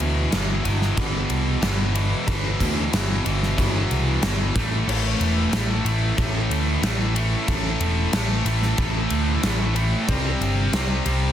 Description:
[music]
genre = hard rock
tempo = 92 BPM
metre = 4/4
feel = straight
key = unclear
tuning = A4 = 442 Hz
[part]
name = high-gain distorted guitar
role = riff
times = 0.0-11.3 s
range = E2 to C4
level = -24 LUFS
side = equal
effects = distortion
[part]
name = overdriven picked electric bass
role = bass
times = 0.0-11.3 s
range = E1 to D2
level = -23 LUFS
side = equal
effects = none
[part]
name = gated 80s drum kit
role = drums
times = 0.0-11.2 s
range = crash cymbal, kick drum, ride cymbal, snare drum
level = -26 LUFS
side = equal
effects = none
[sound]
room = small room ambience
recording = dense, heavily limited modern master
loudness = -20 LUFS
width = side -10 dB against mid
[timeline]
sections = 0.0-11.3 A section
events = none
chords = 0.0 Em/G; 4.6 A5; 10.1 C5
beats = 0.32 0.97 1.62 | 2.27 2.92 3.58 4.23 | 4.88 5.53 6.18 6.83 | 7.48 8.13 8.79 9.44 | 10.09 10.74

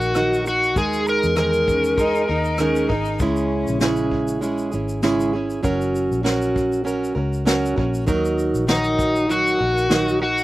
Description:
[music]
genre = acoustic pop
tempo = 98 BPM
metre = 4/4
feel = swing 55% on 16ths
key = unclear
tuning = A4 = 441 Hz
[part]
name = overdriven slide guitar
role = melody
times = 0.0-2.9, 8.7-10.4 s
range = D#4 to A#4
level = -20 LUFS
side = left 1 dB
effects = slapback echo
[part]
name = fingerpicked plugged-in steel-string acoustic guitar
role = accompaniment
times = 0.0-10.4 s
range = C#3 to A#4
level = -21 LUFS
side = right 2 dB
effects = none
[part]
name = vintage muted fingered electric bass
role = bass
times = 0.0-10.4 s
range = F#1 to E2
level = -27 LUFS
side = left 1 dB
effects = none
[part]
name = vintage brush drum kit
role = drums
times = 0.0-10.4 s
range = kick drum, rim click, shaker, snare drum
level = -26 LUFS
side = left 1 dB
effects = none
[part]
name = rich cello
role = second line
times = 1.7-4.4 s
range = C#4 to D#4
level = -26 LUFS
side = left 3 dB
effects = none
[sound]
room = little or no reverb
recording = recorded outdoors, with no room sound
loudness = -18 LUFS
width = side -16 dB against mid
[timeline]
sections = 0.0-10.4 A section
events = none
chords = 0.0 D#m; 0.8 G#sus2/D#; 3.2 C#m; 5.6 F#; 8.1 D#m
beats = 0.15 | 0.76 1.37 1.98 2.59 | 3.20 3.81 4.42 5.03 | 5.64 6.25 6.86 7.47 | 8.08 8.69 9.30 9.91

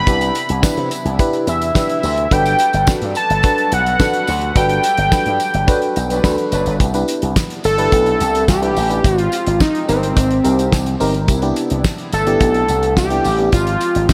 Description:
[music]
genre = early-eighties boogie funk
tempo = 107 BPM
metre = 4/4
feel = straight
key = C major from 6.8 s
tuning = A4 = 440 Hz
[part]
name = fat analog lead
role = melody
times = 0.0-14.1 s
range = C4 to B5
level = -20 LUFS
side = equal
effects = phaser, slapback echo, tape echo
[part]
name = chorused pulse-width pad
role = sustained chords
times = 0.0-14.1 s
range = C3 to B4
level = -32 LUFS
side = equal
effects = none
[part]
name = FM electric piano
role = accompaniment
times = 0.1-13.5 s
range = B3 to B4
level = -24 LUFS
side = equal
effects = chorus, slapback echo
[part]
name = slap bass with an envelope filter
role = bass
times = 0.1-14.1 s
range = F#1 to C3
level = -22 LUFS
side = equal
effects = none
[part]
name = damped 70s drum kit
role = drums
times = 0.1-14.1 s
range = hi-hat, kick drum, snare drum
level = -21 LUFS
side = equal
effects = none
[part]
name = tambourine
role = percussion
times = 0.1-14.1 s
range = none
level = -35 LUFS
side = equal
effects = none
[part]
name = analog synth brass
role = second line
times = 5.7-6.8 s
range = F#3 to B4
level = -27 LUFS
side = equal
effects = chorus
[sound]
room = moderate lush hall reverb, RT60 2.0 s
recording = big arena sound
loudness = -16 LUFS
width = mono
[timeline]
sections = 0.0-6.8 A section; 6.8-14.1 B section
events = band accent 4.6-6.8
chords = 0.0 Cmaj9; 2.3 Gmaj9; 6.8 Cmaj9; 9.0 Abmaj9; 11.3 Cmaj9; 13.5 Abmaj7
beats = | 0.07 0.63 1.19 1.75 | 2.31 2.88 3.44 4.00 | 4.56 5.12 5.68 6.24 | 6.80 7.36 7.92 8.48 | 9.04 9.60 10.16 10.73 | 11.29 11.85 12.41 12.97 | 13.53 14.09

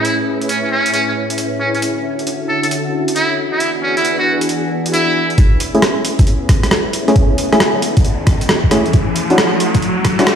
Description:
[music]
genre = UK garage, two-step garage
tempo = 135 BPM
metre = 4/4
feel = swing 65% on 16ths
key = A major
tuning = A4 = 440 Hz
[part]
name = trumpet with metal mute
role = melody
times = 0.0-5.3 s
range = C#4 to A4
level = -18 LUFS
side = right 1 dB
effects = dub echo
[part]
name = soft string machine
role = sustained chords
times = 0.0-10.4 s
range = A2 to B4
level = -20 LUFS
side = equal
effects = ensemble chorus, sidechain pumping
[part]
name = boom bap sampler-style drum kit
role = drums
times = 0.0-10.4 s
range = hi-hat, rim click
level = -18 LUFS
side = equal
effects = overdrive
[part]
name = rubbery square bass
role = bass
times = 5.4-10.4 s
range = none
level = barely audible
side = none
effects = none
[part]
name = electronic kick drum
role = drums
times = 5.4-10.2 s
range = none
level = -13 LUFS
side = equal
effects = overdrive
[part]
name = riser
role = sound effects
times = 6.9-10.4 s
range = none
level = -21 LUFS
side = left 1 dB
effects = none
[part]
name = percussive organ stab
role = stabs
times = 5.7-10.3 s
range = A3 to G#4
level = -16 LUFS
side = equal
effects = chorus, cassette tape, dub echo
[sound]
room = moderate lush hall reverb, RT60 1.7 s, digital ambience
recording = played on a big sound system in a bare room, stone room reverb, high-pass filter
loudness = -13 LUFS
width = side -8 dB against mid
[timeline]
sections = 0.0-5.4 A section; 5.4-10.4 B section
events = build-up 5.4-10.4; filter sweep on synth stab 5.4-10.4; filter sweep 5.4-10.4; riser 6.9-10.4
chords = 0.0 Amaj7; 1.8 Dmaj9; 3.4 E9; 5.4 Amaj7; 8.9 Dmaj9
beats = | 0.05 0.49 0.94 1.38 | 1.82 2.27 2.71 3.16 | 3.60 4.05 4.49 4.94 | 5.38 5.83 6.27 6.71 | 7.16 7.60 8.05 8.49 | 8.94 9.38 9.82 10.27

